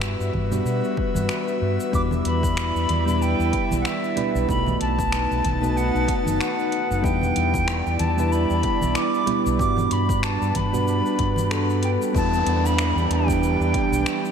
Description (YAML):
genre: sunset chillout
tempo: 94 BPM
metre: 4/4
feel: swing 56% on 16ths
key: E minor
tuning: A4 = 440 Hz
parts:
  - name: soft electric-piano-like synth keys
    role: accompaniment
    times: 0.0-14.3 s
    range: G3 to B4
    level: -26 LUFS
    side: moving between left 5 dB and right 6 dB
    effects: chorus, auto-pan, ping-pong delay
  - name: airy breathy pad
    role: sustained chords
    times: 0.0-14.3 s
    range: E3 to A5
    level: -27 LUFS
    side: right 1 dB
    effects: chorus
  - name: fingered electric bass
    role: bass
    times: 0.0-14.0 s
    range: F#1 to B2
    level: -24 LUFS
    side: equal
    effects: none
  - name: deep house drum kit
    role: drums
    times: 0.0-14.3 s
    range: finger snaps, hi-hat, shaker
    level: -32 LUFS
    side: left 2 dB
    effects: overdrive
  - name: electronic kick drum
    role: drums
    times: 0.3-13.9 s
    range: none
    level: -28 LUFS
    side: equal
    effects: overdrive
  - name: congas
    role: percussion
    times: 0.3-11.5 s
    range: none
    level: -35 LUFS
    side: right 3 dB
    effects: none
  - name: silver concert flute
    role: melody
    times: 1.9-14.3 s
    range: E5 to D6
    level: -26 LUFS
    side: equal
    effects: analog delay
  - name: downlifter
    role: sound effects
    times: 12.1-14.3 s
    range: none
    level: -32 LUFS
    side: equal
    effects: none
room: wet cathedral reverb, RT60 4.7 s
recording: dreamy mix soaked in reverb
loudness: -20 LUFS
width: side -7 dB against mid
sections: 0.0-12.1 A section; 12.1-14.3 B section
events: none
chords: 0.0 Gmaj7; 1.9 Em7; 4.5 B7; 7.0 Em7; 9.6 Gmaj7; 12.1 Em7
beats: 0.02 0.66 1.29 | 1.93 2.57 3.21 3.85 | 4.49 5.12 5.76 6.40 | 7.04 7.68 8.31 8.95 | 9.59 10.23 10.87 11.51 | 12.14 12.78 13.42 14.06